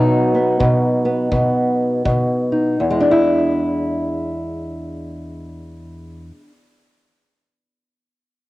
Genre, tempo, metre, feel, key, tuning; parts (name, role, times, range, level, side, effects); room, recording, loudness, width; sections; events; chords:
acoustic country blues, solo or duo; 78-87 BPM; 4/4; swing 62% on 8ths; E mixolydian; A4 = 439 Hz
fingerpicked old ladder-braced acoustic guitar; melody; 0.0-6.5 s; E2 to E4; -16 LUFS; equal; cassette tape
kick drum; drums; 0.6-2.3 s; -26 LUFS; equal; cassette tape
moderate spring reverb, RT60 1.9 s; home recording on cassette; -15 LUFS; side -18 dB against mid
0.0-2.8 A section; 2.8-5.9 B section
slowing down 0.0-2.8
0.0 B; 2.8 E7